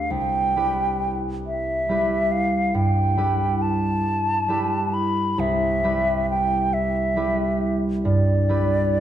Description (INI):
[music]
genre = classical, impressionist duo for flute and harp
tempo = 45 BPM (dotted quarters)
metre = 12/8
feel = rubato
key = unclear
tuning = A4 = 440 Hz
[part]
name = hollow concert flute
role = melody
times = 0.0-9.0 s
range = D5 to B5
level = -23 LUFS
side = equal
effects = none
[part]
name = concert harp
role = accompaniment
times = 0.0-9.0 s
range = C2 to B4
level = -23 LUFS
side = right 1 dB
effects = none
[sound]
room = moderate scoring stage reverb, RT60 1.7 s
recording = dark, warm production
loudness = -20 LUFS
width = side -10 dB against mid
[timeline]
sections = 0.0-9.0 A section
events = none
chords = 0.1 Cmaj7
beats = | 0.10 1.45 2.74 4.05 | 5.39 6.73 8.05